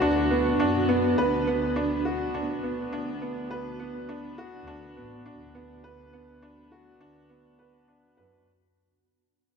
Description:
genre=piano and strings electronica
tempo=103 BPM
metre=4/4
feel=straight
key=unclear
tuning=A4 = 439 Hz
part: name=granular cloud pad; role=sustained chords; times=0.0-8.4 s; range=B3 to F#4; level=-31 LUFS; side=equal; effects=built-in reverb
part: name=clear upright piano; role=riff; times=0.0-8.5 s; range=B3 to B4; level=-27 LUFS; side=right 1 dB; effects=ping-pong delay
part: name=clear studio double bass section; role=bass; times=0.0-8.4 s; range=A1 to F#2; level=-36 LUFS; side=left 1 dB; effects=tube saturation
room=moderate lush hall reverb, RT60 1.8 s, studio reverb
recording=none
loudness=-24 LUFS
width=side -6 dB against mid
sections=0.0-8.5 A section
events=fade-out 0.0-8.5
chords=0.0 Bm/D

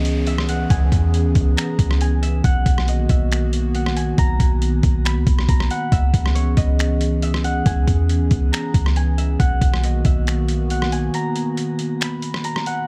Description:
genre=hip hop, atmospheric cloud-rap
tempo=138 BPM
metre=4/4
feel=half-time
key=unclear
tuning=A4 = 439 Hz
part: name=concert harp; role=melody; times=0.0-12.9 s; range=C#5 to B5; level=-31 LUFS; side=equal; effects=low-pass filter, digital delay
part: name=dark analog pad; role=sustained chords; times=0.0-12.8 s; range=D#3 to G#4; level=-26 LUFS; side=equal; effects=chorus, sidechain pumping
part: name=clean 808-style bass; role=bass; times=0.0-11.1 s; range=B1 to E2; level=-21 LUFS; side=equal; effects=none
part: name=downlifter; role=sound effects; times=0.0-2.4 s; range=none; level=-40 LUFS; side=equal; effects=none
part: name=trip hop sampler-style drum kit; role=drums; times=0.1-12.8 s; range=finger snaps, hi-hat, kick drum, rim click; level=-23 LUFS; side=equal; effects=overdrive
room=digital ambience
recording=none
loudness=-19 LUFS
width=mono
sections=0.0-12.9 A section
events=break 11.1-12.9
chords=0.0 C#m7; 2.4 Bmaj7; 5.9 C#m7; 9.4 Bmaj7

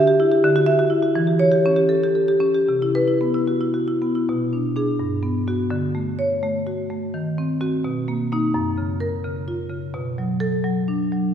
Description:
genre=classical, contemporary piece for solo marimba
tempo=75-87 BPM (dotted quarters)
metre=6/8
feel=rubato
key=B minor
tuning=A4 = 441 Hz
part: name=marimba with medium mallets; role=solo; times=0.0-11.3 s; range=F#2 to E5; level=-18 LUFS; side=equal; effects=none
room=wet concert hall reverb, RT60 2.3 s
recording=heard from further back in the room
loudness=-19 LUFS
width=side -9 dB against mid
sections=0.0-4.3 A section; 4.3-11.3 B section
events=none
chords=0.4 Dadd9; 1.2 Em6; 2.7 Cmaj7; 4.3 Bm6; 5.0 Gmaj7; 5.7 Dmaj7; 7.1 D#m6; 7.8 Bmaj7; 8.5 F#maj7; 9.9 Bm7

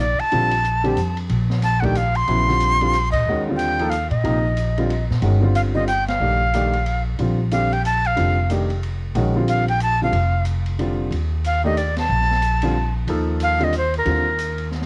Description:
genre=modal jazz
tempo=184 BPM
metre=3/4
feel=swing 62% on 8ths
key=Bb major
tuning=A4 = 440 Hz
part: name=breathy bright jazz flute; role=melody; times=0.0-14.7 s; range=Bb4 to C6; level=-23 LUFS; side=equal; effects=cassette tape
part: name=upright bass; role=bass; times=0.0-14.9 s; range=F1 to Bb2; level=-24 LUFS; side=equal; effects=none
part: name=open jazz drum kit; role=drums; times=0.2-14.9 s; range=hi-hat, kick drum, ride cymbal, snare drum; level=-37 LUFS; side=equal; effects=cassette tape
part: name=clear concert grand piano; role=accompaniment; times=0.3-14.2 s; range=C3 to A4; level=-26 LUFS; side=equal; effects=cassette tape
room=small room ambience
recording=home recording on cassette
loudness=-20 LUFS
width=mono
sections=0.0-14.9 A section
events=band accent 3.1, 6.0, 11.9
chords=0.0 Bbmaj9; 3.3 Ebmaj9; 7.2 Bbadd9; 11.1 Ebmaj9

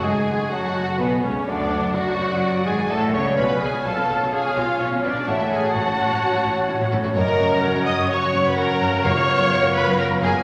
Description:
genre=classical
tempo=127 BPM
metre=4/4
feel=rubato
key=F# minor, F# major from 7.2 s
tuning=A4 = 441 Hz
part: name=warm symphonic violin section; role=melody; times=0.0-10.3 s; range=B3 to E#5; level=-36 LUFS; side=equal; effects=none
part: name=mellow clarinet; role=second line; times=0.0-10.4 s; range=B3 to C#5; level=-32 LUFS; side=equal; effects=none
part: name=mellow cor anglais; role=second line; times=0.0-10.4 s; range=B3 to F#5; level=-32 LUFS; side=equal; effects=none
part: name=warm symphonic violin section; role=second line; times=0.0-10.4 s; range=B4 to D#6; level=-30 LUFS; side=equal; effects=none
part: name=rich symphonic viola section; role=accompaniment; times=0.0-10.3 s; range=B3 to D#5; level=-27 LUFS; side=equal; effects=none
part: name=warm bassoon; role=accompaniment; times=0.0-10.4 s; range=B2 to C#4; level=-34 LUFS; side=equal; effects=none
part: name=mellow French horn section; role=sustained chords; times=0.0-10.4 s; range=B2 to F#4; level=-33 LUFS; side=equal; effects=none
part: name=concert harp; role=arpeggios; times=0.0-10.4 s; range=F#2 to D6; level=-31 LUFS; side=equal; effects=none
part: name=rich symphonic cello section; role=bass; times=0.0-10.3 s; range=C#2 to C#3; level=-29 LUFS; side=equal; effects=none
part: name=warm symphonic double bass section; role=bass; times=0.0-10.3 s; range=F#1 to D2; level=-34 LUFS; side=equal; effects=none
part: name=mellow hollow silver concert flute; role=second line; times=0.5-10.4 s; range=A#4 to A5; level=-31 LUFS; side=equal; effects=none
part: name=timpani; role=percussion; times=9.0-9.7 s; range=F#2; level=-33 LUFS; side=equal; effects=none
room=wet scoring stage reverb, RT60 1.5 s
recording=none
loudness=-21 LUFS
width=mono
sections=0.0-10.4 A section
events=none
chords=0.0 F#m; 1.5 Bm; 3.4 C#7/B; 5.3 F#m/A; 7.2 F#; 9.0 C#7/F#

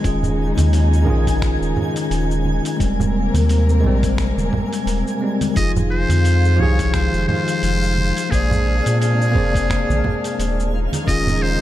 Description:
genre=sunset chillout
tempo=87 BPM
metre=4/4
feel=swing 56% on 16ths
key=unclear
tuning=A4 = 440 Hz
part: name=bell-like tine electric piano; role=accompaniment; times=0.0-11.6 s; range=Eb3 to D5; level=-22 LUFS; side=left 1 dB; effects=auto-pan, tape echo
part: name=warm symphonic string section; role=sustained chords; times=0.0-11.6 s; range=C3 to Bb4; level=-26 LUFS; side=left 2 dB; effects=none
part: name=round analog bass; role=bass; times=0.0-11.6 s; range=Eb1 to Bb2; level=-18 LUFS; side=equal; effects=none
part: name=dusty soul sampler-style drum kit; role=drums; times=0.0-11.4 s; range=cabasa, finger snaps, hi-hat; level=-32 LUFS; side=equal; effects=overdrive
part: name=electronic kick drum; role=drums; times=0.0-11.2 s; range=none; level=-22 LUFS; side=equal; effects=overdrive
part: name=twinkling granular texture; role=texture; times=0.0-11.6 s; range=F5 to Ab6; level=-32 LUFS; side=right 1 dB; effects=built-in reverb
part: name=congas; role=percussion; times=0.2-11.4 s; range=none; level=-25 LUFS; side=right 2 dB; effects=none
part: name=trumpet with metal mute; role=melody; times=5.6-11.6 s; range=Ab4 to Eb5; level=-23 LUFS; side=equal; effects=tape echo
room=light reverb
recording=dark, warm production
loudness=-16 LUFS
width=side -13 dB against mid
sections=0.0-11.6 A section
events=none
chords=0.0 Eb9sus4; 2.8 Abmaj9/Eb; 5.6 Fm9; 8.3 Bb9; 10.7 Eb9sus4

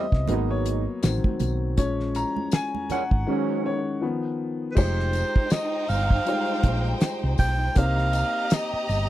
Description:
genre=lush 1970s-style soul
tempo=80 BPM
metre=4/4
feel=swing 58% on 16ths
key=Eb minor, F minor from 4.8 s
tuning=A4 = 441 Hz
part: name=warm grand piano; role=accompaniment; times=0.0-9.1 s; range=Eb3 to Bb5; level=-28 LUFS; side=left 4 dB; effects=none
part: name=clear trombone section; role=stabs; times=0.0-3.8 s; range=Ab2 to Eb4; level=-28 LUFS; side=right 16 dB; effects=none
part: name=hollow-body short-scale fingered electric bass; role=bass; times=0.1-9.1 s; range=F1 to C2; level=-25 LUFS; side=equal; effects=none
part: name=damped 70s drum kit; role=drums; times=0.1-9.1 s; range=crash cymbal, hi-hat, kick drum, snare drum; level=-22 LUFS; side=equal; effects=none
part: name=congas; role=percussion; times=0.3-3.1 s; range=none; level=-34 LUFS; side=right 7 dB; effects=none
part: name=tambourine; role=percussion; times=1.0-9.1 s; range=none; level=-41 LUFS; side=left 20 dB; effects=none
part: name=clear alto saxophone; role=melody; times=4.7-9.1 s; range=Cb5 to G5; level=-27 LUFS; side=right 1 dB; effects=none
part: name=warm symphonic violin section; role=second line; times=4.8-9.1 s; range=Eb4 to Bb5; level=-31 LUFS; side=right 2 dB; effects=none
room=light reverb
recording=dry, close 1970s-style studio recording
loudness=-22 LUFS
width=side -14 dB against mid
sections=0.0-4.8 A section; 4.8-9.1 B section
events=grand piano solo 0.0-4.8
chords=0.3 Abm7; 1.0 Adim7; 1.8 Bbm7; 3.3 Ab7sus4; 4.0 Ebsus2; 4.8 Fm9; 7.8 Cm7

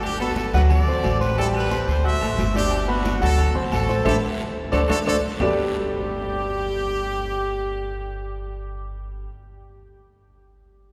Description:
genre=latin, salsa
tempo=179 BPM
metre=4/4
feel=straight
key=G major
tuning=A4 = 440 Hz
part: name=brilliant horn section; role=melody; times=0.0-8.8 s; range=D4 to E5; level=-29 LUFS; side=equal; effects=none
part: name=clear concert grand piano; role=accompaniment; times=0.0-9.3 s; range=F#3 to F#6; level=-28 LUFS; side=equal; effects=none
part: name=upright bass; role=bass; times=0.0-9.3 s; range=G1 to D2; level=-27 LUFS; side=equal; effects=none
part: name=agogo bells and timbales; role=percussion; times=0.0-5.5 s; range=none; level=-35 LUFS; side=equal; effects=none
part: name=claves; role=percussion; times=0.0-5.5 s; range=none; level=-41 LUFS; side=equal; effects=none
part: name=congas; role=percussion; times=0.0-5.5 s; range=none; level=-34 LUFS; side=equal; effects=none
part: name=guiro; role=percussion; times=0.0-5.5 s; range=none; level=-44 LUFS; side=equal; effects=none
room=wet cathedral reverb, RT60 5.1 s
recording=recorded in a church or concert hall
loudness=-22 LUFS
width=mono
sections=0.0-5.4 A section; 5.4-8.1 B section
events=band accent 4.1-5.4; drum fill 4.9-5.4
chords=0.0 Gadd9; 0.7 D7; 1.4 Am7; 2.0 D7; 2.7 G; 3.4 D7; 4.1 Am; 4.7 D7; 5.4 Gadd9

